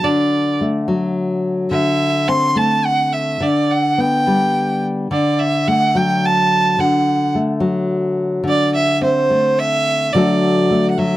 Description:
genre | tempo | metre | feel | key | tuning
acoustic folk duo or small band | 107 BPM | 3/4 | straight | D mixolydian | A4 = 440 Hz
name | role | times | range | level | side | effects
rich fiddle | melody | 0.0-11.2 s | C5 to C6 | -17 LUFS | right 2 dB | none
nylon-string guitar | accompaniment | 0.0-11.2 s | D3 to A4 | -17 LUFS | left 2 dB | none
room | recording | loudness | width
little or no reverb | dry, close 1970s-style studio recording | -14 LUFS | side -15 dB against mid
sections
0.0-11.2 A section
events
none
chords
0.0 D; 1.7 Am/D; 3.4 G/D; 5.1 D; 8.5 Am/D; 10.2 D

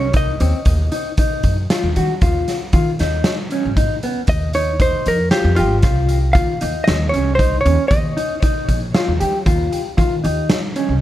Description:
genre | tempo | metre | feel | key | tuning
progressive instrumental, band music in an uneven meter | 116 BPM | 7/4 | straight | unclear | A4 = 440 Hz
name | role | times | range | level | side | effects
hollow-body jazz guitar | melody | 0.0-11.0 s | F4 to F5 | -21 LUFS | right 1 dB | ping-pong delay
mellow electric guitar | arpeggios | 0.0-10.9 s | B3 to G4 | -22 LUFS | left 1 dB | ping-pong delay
upright bass | bass | 0.0-11.0 s | Ab1 to D#3 | -19 LUFS | equal | none
raw garage drum kit | drums | 0.1-10.9 s | hi-hat, kick drum, snare drum | -19 LUFS | equal | none
room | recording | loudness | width
small room ambience | none | -15 LUFS | side -13 dB against mid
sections
0.0-11.0 A section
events
none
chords
0.0 N.C.; 4.3 Db; 7.9 N.C.

